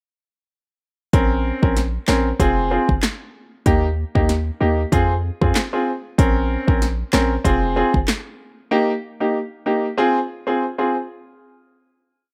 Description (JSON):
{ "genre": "dancehall", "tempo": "95 BPM", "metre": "4/4", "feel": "swing 56% on 16ths", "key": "F minor", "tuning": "A4 = 440 Hz", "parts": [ { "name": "clear grand piano", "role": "accompaniment", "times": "1.1-10.9 s", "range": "Bb3 to Bb4", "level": "-22 LUFS", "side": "equal", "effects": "none" }, { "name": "warm 808-style bass", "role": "bass", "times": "1.1-8.1 s", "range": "F1 to F2", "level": "-23 LUFS", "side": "equal", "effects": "none" }, { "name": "deep house drum kit", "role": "drums", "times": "1.1-8.2 s", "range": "handclaps, hi-hat, kick drum, rim click, snare drum", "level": "-22 LUFS", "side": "equal", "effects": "overdrive" } ], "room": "little or no reverb", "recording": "rough home demo mix", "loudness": "-20 LUFS", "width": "mono", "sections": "1.1-11.2 verse", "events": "none", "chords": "1.1 Bbmadd9; 2.4 Fm; 3.7 Eb; 4.9 Fm; 6.2 Bbmadd9; 7.5 Fm; 8.7 Eb; 10.0 Fm", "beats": "| 1.14 1.77 2.40 3.03 | 3.66 4.29 4.92 5.56 | 6.19 6.82 7.45 8.08 | 8.71 9.35 9.98 10.61" }